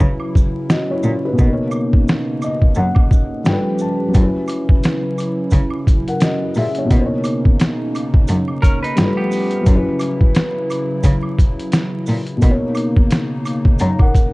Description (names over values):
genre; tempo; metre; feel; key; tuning
lo-fi hip hop; 87 BPM; 4/4; swing 58% on 16ths; B major; A4 = 440 Hz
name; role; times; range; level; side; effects
felt-muted upright piano; accompaniment; 0.0-14.3 s; B2 to A#5; -21 LUFS; left 1 dB; none
hollow soft pad; sustained chords; 0.0-14.3 s; C#3 to G4; -24 LUFS; right 1 dB; chorus
dark cello; bass; 0.0-13.9 s; F#2 to C#3; -19 LUFS; equal; none
trip hop sampler-style drum kit; drums; 0.0-14.3 s; hi-hat, kick drum, snare drum; -14 LUFS; equal; none
maracas and woodblock; percussion; 0.0-14.3 s; none; -35 LUFS; right 3 dB; none
semi-hollow electric guitar; second line; 8.6-9.6 s; B3 to B4; -25 LUFS; right 2 dB; tape echo
room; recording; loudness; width
studio ambience; dark, warm production, vinyl crackle, nothing above 10.8 kHz; -14 LUFS; side -22 dB against mid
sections
0.0-14.3 A section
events
break 0.0-4.1; felt piano fill 2.1-4.1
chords
0.0 F#7sus4; 1.4 Bmaj9; 3.5 G9; 4.1 F#7sus4; 6.9 Bmaj9; 9.0 G9; 9.7 F#7sus4; 12.4 Bmaj9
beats
0.01 0.70 | 1.39 2.08 2.77 3.46 | 4.15 4.84 5.53 6.22 | 6.91 7.60 8.29 8.98 | 9.66 10.36 11.04 11.73 | 12.42 13.11 13.80